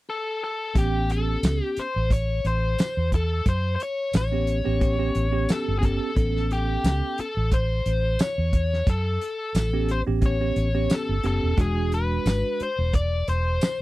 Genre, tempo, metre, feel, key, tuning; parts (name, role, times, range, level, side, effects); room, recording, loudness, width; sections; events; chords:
straight-eighth soul blues; 89 BPM; 4/4; swing 55% on 16ths; A mixolydian; A4 = 439 Hz
biting lead guitar; melody; 0.1-13.8 s; G4 to D5; -28 LUFS; left 2 dB; overdrive
bell-like tine electric piano; accompaniment; 0.7-12.7 s; G#3 to A4; -28 LUFS; right 3 dB; medium stereo tremolo
vintage muted fingered electric bass; bass; 0.8-13.6 s; E1 to F#2; -24 LUFS; equal
warm soul drum kit; drums; 0.8-13.8 s; hi-hat, kick drum, snare drum, tambourine; -24 LUFS; equal
little or no reverb; -22 LUFS; side -17 dB against mid
0.8-13.8 A section
0.0 N.C.; 0.8 A9; 11.6 E9